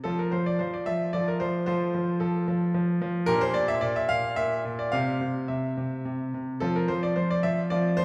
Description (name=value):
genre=classical-period piano sonatina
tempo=110 BPM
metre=3/4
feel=rubato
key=F major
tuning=A4 = 440 Hz
part: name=bright concert grand piano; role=solo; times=0.0-8.0 s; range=Bb2 to F5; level=-27 LUFS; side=equal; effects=none
room=wet recital hall reverb, RT60 1.7 s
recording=heard from further back in the room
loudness=-27 LUFS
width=mono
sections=0.1-8.0 A section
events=none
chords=0.1 N.C.; 1.1 F; 3.3 Gm/Bb; 4.9 C; 6.6 F5